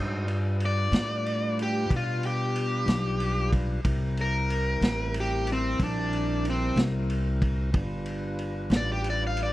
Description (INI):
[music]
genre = slow blues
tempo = 62 BPM (dotted quarters)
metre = 12/8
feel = straight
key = G mixolydian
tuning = A4 = 440 Hz
[part]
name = tonewheel organ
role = sustained chords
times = 0.0-9.5 s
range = G3 to C5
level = -35 LUFS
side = equal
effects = slow rotary speaker
[part]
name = upright bass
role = bass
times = 0.0-9.5 s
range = G1 to B2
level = -28 LUFS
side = equal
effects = none
[part]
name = vintage drum kit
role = drums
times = 0.3-9.5 s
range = kick drum, ride cymbal, snare drum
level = -31 LUFS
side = equal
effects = none
[part]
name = smooth overdriven lead guitar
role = melody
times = 0.7-9.5 s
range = C4 to F5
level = -30 LUFS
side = left 1 dB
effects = none
[sound]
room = little or no reverb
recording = dark, warm production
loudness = -25 LUFS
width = side -16 dB against mid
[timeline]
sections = 0.0-9.5 A section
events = lead electric guitar solo 0.0-9.5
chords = 0.0 G7; 3.8 C7; 7.7 G7